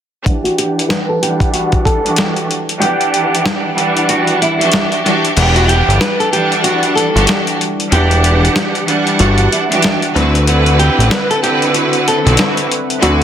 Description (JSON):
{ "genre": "hip hop, boom-bap hip-hop", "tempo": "94 BPM", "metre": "4/4", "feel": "swing 60% on 16ths", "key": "E minor", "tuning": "A4 = 440 Hz", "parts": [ { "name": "bright studio string section", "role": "accompaniment", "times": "0.3-13.2 s", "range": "D3 to F#5", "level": "-15 LUFS", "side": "right 1 dB", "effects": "cassette tape, high-pass filter, low-pass filter" }, { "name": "dusty soul sampler-style drum kit", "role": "drums", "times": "0.3-13.2 s", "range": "crash cymbal, hi-hat, kick drum, snare drum", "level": "-17 LUFS", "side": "left 1 dB", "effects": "none" }, { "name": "flamenco guitar", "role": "melody", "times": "0.4-13.2 s", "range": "E4 to B4", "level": "-18 LUFS", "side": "equal", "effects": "high-pass filter, low-pass filter, ping-pong delay" }, { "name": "warm analog pad", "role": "sustained chords", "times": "5.4-13.2 s", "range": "D3 to F#5", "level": "-23 LUFS", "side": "left 1 dB", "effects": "chorus, high-pass filter, low-pass filter" }, { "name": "fat analog bass", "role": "bass", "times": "5.4-13.2 s", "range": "E1 to D2", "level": "-12 LUFS", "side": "equal", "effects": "none" } ], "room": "light reverb", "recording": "dense, heavily limited modern master", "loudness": "-11 LUFS", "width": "side -9 dB against mid", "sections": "0.3-5.4 A section; 5.4-13.2 B section", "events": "filter sweep 0.3-5.4; kick muted 2.8-5.4, 5.4-13.2", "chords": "0.3 Em9; 10.2 D13" }